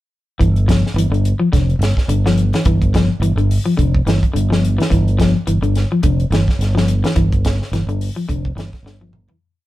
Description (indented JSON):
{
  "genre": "afrobeat",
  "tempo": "106 BPM",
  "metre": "4/4",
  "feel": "swing 56% on 16ths",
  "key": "unclear",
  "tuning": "A4 = 437 Hz",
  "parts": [
    { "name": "electric guitar at the edge of break-up", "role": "arpeggios", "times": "0.4-9.4 s", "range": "D3 to F3", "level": "-19 LUFS", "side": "left 2 dB", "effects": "none" },
    { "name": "fingered electric bass", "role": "bass", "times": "0.4-9.3 s", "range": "F1 to G1", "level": "-16 LUFS", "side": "equal", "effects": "none" },
    { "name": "tight funk drum kit", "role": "drums", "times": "0.4-9.4 s", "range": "hi-hat, kick drum, snare drum, toms", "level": "-19 LUFS", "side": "right 1 dB", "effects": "none" }
  ],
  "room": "light reverb",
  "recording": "band playing live in one room",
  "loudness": "-14 LUFS",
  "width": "side -16 dB against mid",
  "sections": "0.4-9.4 groove",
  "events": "fade-out 7.2-9.4; drum fill 8.9-9.4",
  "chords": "0.4 G5"
}